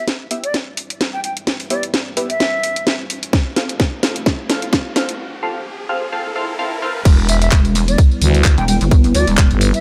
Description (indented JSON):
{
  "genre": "bass house",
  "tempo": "129 BPM",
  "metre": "4/4",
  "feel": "swing 55% on 16ths",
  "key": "E phrygian",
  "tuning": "A4 = 439 Hz",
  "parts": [
    { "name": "mellow jazz flute", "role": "melody", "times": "0.0-2.9, 7.3-9.8 s", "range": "D5 to G5", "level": "-26 LUFS", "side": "equal", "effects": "dub echo" },
    { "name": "dark analog pad", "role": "sustained chords", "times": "0.7-9.8 s", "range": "G3 to F5", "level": "-29 LUFS", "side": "equal", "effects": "chorus, sidechain pumping" },
    { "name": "band-passed chord stab", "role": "stabs", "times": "0.0-7.0 s", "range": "B3 to F5", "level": "-27 LUFS", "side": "equal", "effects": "phaser, sidechain pumping, dub echo" },
    { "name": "riser and swell", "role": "sound effects", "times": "1.1-7.1 s", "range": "none", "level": "-34 LUFS", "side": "equal", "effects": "none" },
    { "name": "garage drum kit", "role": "drums", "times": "0.1-9.8 s", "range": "crash cymbal, handclaps, hi-hat, ride cymbal, snare drum, tambourine", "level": "-22 LUFS", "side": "equal", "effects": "none" },
    { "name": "electronic kick drum", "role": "drums", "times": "3.3-9.5 s", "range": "none", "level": "-15 LUFS", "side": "equal", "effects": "none" },
    { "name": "growling FM bass", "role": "bass", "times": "7.1-9.7 s", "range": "E1 to D2", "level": "-16 LUFS", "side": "equal", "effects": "tube saturation, sidechain pumping" },
    { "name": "pulsing pluck wobble bass", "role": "bass", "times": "7.5-9.5 s", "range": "E1 to D2", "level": "-18 LUFS", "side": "equal", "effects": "chorus, tube saturation, sidechain pumping" }
  ],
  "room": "light reverb, digital ambience",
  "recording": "high-pass filter",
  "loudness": "-17 LUFS",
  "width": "mono",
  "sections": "0.0-7.1 A section; 7.1-9.8 B section",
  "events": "build-up 0.0-7.1; drum fill 0.0-5.2; filter sweep on synth stab 0.0-7.1; filter sweep on analog synth pad 0.0-7.1; riser 1.1-7.1; break 5.2-7.1; swell 6.1-7.1; drop 7.1-9.8",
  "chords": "0.0 Em; 3.3 F; 7.1 Em",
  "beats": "0.08 0.54 1.01 | 1.47 1.94 2.40 2.87 | 3.33 3.80 4.26 4.73 | 5.19 5.66 6.12 6.59 | 7.05 7.52 7.98 8.45 | 8.91 9.38"
}